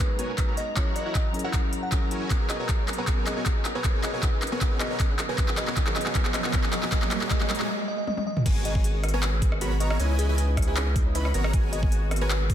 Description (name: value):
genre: future bass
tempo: 156 BPM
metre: 4/4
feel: half-time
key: G# minor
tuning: A4 = 440 Hz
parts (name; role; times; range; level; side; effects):
- bell-like FM electric piano; melody; 0.0-12.5 s; G#4 to F#5; -35 LUFS; equal; chorus, cassette tape, sidechain pumping, digital delay
- tine electric piano; accompaniment; 0.0-2.3 s; F#3 to C#5; -36 LUFS; left 2 dB; overdrive, sidechain pumping, tape echo
- muted studio string section; sustained chords; 0.0-12.5 s; C#3 to A#5; -40 LUFS; equal; sidechain pumping
- dense compressed supersaw; riff; 0.0-12.3 s; A#3 to B5; -33 LUFS; equal; sidechain pumping, low-pass filter
- big-room dance drum kit; drums; 0.0-12.5 s; crash cymbal, handclaps, hi-hat, rim click, toms; -30 LUFS; equal; none
- electronic kick drum; drums; 0.0-12.5 s; none; -25 LUFS; equal; none
- thumb-piano-like synth pluck; arpeggios; 2.3-12.5 s; G#4 to C#5; -39 LUFS; left 4 dB; chorus, sidechain pumping, tape echo
- riser; sound effects; 4.1-7.7 s; none; -35 LUFS; right 2 dB; none
- airy dreamy lead; arpeggios; 8.5-12.3 s; G#5 to B5; -40 LUFS; equal; chorus, sidechain pumping
- saturated sub bass; bass; 8.5-12.5 s; G#1 to C#2; -26 LUFS; equal; sidechain pumping
room: light reverb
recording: dense, heavily limited modern master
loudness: -23 LUFS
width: side -10 dB against mid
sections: 0.0-8.5 A section; 8.5-12.5 B section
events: build-up 0.0-8.5; drum fill 0.0-7.7, 8.1-8.5; riser 4.1-7.7; break 7.7-8.5; drop 8.5-12.5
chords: 0.0 G#m11; 0.8 F#7; 2.3 G#m11; 3.8 C#m9; 5.2 G#m11; 6.9 F#7; 8.5 G#m11; 10.0 C#m9; 11.3 G#m11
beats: 0.00 0.38 | 0.77 1.15 1.53 1.92 | 2.30 2.69 3.07 3.46 | 3.84 4.23 4.61 5.00 | 5.38 5.77 6.15 6.54 | 6.92 7.30 7.69 8.07 | 8.46 8.84 9.23 9.61 | 10.00 10.38 10.77 11.15 | 11.54 11.92 12.30